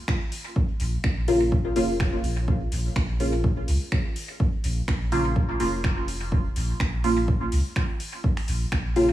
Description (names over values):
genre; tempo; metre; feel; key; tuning
dub techno; 125 BPM; 4/4; swing 55% on 16ths; Bb minor; A4 = 435 Hz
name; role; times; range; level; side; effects
deep house drum kit; drums; 0.1-9.1 s; finger snaps, hi-hat; -34 LUFS; equal; overdrive, dub echo
electronic kick drum; drums; 0.1-8.8 s; none; -25 LUFS; equal; overdrive
soft dub sub bass; bass; 0.8-9.1 s; F1 to Db2; -27 LUFS; equal; sidechain pumping
filtered dub chord stab; stabs; 1.3-9.1 s; Db3 to F4; -26 LUFS; equal; chorus, phaser, sidechain pumping, dub echo
room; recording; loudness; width
light reverb, digital ambience; vinyl crackle, small room ambience; -22 LUFS; side -14 dB against mid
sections
0.0-9.1 A section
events
none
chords
0.0 Bbm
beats
0.08 | 0.56 1.04 1.52 2.00 | 2.48 2.96 3.44 3.92 | 4.40 4.88 5.36 5.84 | 6.32 6.80 7.28 7.76 | 8.24 8.72